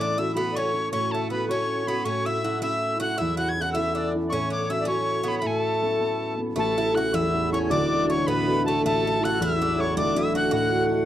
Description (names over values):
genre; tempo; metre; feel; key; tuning
celtic folk; 106 BPM (dotted quarters); 6/8; straight; A major; A4 = 441 Hz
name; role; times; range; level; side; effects
bright reedy wooden whistle; melody; 0.0-10.8 s; A5 to G#6; -28 LUFS; equal; none
Irish bouzouki; second line; 0.0-11.1 s; A3 to F#4; -32 LUFS; right 3 dB; none
accordion; second line; 0.0-11.0 s; A4 to F#5; -31 LUFS; left 3 dB; light tremolo tuning
concert harp; accompaniment; 0.0-11.1 s; D1 to C#5; -25 LUFS; equal; none
room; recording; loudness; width
small room ambience; dry, close 1970s-style studio recording; -22 LUFS; side -11 dB against mid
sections
0.0-6.6 A section; 6.6-11.1 B section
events
none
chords
0.0 F#m/A; 2.1 A; 4.3 F#m/A; 5.4 Aadd9; 7.7 D; 8.8 A; 10.0 D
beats
0.36 | 0.92 1.49 | 2.05 2.62 | 3.18 3.75 | 4.31 4.88 | 5.44 6.01 | 6.57 7.13 | 7.70 8.26 | 8.83 9.39 | 9.96 10.52